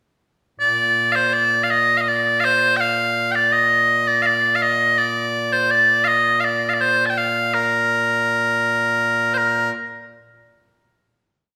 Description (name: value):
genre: scottish traditional, Scottish pipe music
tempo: 82 BPM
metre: 3/4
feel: straight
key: Bb major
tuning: A4 = 440 Hz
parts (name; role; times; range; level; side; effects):
- loud bright bagpipes; solo; 0.6-9.7 s; Bb2 to A5; -18 LUFS; equal; none
room: wet recital hall reverb, RT60 1.5 s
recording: recorded in a church or concert hall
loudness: -18 LUFS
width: mono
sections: 0.6-9.4 A section; 9.4-11.6 final note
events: none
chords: none